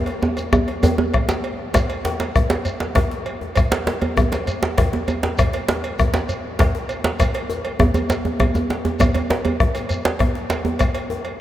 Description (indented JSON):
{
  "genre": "west african traditional, West African drum ensemble",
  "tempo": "132 BPM (dotted quarters)",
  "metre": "12/8",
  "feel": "straight",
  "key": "none",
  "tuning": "none",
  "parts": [
    { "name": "cowbell", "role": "percussion", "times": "0.1-11.4 s", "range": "none", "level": "-30 LUFS", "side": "right 4 dB", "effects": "none" },
    { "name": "djembe", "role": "percussion", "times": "0.1-11.2 s", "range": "none", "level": "-27 LUFS", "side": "left 2 dB", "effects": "none" },
    { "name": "bombo", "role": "percussion", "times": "0.2-11.0 s", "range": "none", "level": "-22 LUFS", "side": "left 1 dB", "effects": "none" },
    { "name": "djembe", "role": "percussion", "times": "0.2-10.8 s", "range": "none", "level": "-22 LUFS", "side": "right 2 dB", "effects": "none" },
    { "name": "shekere", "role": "percussion", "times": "0.2-10.9 s", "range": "none", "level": "-29 LUFS", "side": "left 1 dB", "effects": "none" }
  ],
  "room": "wet cathedral reverb, RT60 6.7 s",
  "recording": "in a vast, echoing space",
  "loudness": "-18 LUFS",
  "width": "side -13 dB against mid",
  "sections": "0.0-1.7 A section; 1.7-11.4 A section",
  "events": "drum fill 0.0-1.7, 8.2-9.0",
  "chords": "none",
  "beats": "0.37 0.83 1.29 | 1.74 2.20 2.65 3.11 | 3.56 4.02 4.47 4.93 | 5.38 5.83 6.29 6.74 | 7.19 7.65 8.10 8.55 | 9.00 9.45 9.90 10.35 | 10.80 11.25"
}